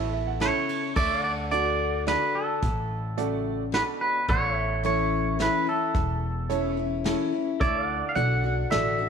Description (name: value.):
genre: honky-tonk and classic country.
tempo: 108 BPM.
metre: 3/4.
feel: straight.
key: D major.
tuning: A4 = 439 Hz.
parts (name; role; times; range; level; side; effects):
twangy electric guitar; melody; 0.0-9.1 s; A4 to F#5; -27 LUFS; right 2 dB; tape echo.
bright upright piano; accompaniment; 0.0-9.1 s; A3 to A5; -31 LUFS; right 11 dB; none.
picked steel-string acoustic guitar; accompaniment; 0.0-9.1 s; E2 to F#4; -31 LUFS; left 11 dB; none.
pedal steel guitar; sustained chords; 0.0-9.1 s; A4 to F#5; -35 LUFS; right 1 dB; none.
upright bass; bass; 0.0-9.1 s; E1 to D2; -30 LUFS; equal; none.
vintage brush drum kit; drums; 0.4-8.8 s; crash cymbal, hi-hat, kick drum, ride cymbal, snare drum; -32 LUFS; equal; none.
room: moderate echo chamber reverb, RT60 2.0 s, studio reverb.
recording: 1960s-style stereo with parts hard left and right.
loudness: -23 LUFS.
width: side -6 dB against mid.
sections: 1.0-9.1 A section.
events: upright piano fill 0.0-1.0.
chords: 0.0 A; 1.0 D; 4.3 A; 7.6 D.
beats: 0.41 | 0.97 1.52 2.07 | 2.63 3.18 3.73 | 4.29 4.84 5.39 | 5.95 6.50 7.05 | 7.61 8.16 8.71.